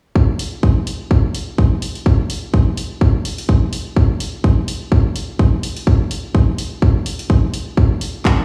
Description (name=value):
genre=bass house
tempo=126 BPM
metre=4/4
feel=swing 56% on 16ths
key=none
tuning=none
part: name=electronic kick drum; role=drums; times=0.2-8.4 s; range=none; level=-16 LUFS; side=equal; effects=none
part: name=garage drum kit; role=drums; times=0.4-8.4 s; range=handclaps, hi-hat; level=-29 LUFS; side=equal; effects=none
room=little or no reverb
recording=played on a big sound system in a bare room, stone room reverb, studio reverb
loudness=-17 LUFS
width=mono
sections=0.2-8.4 A section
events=none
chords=none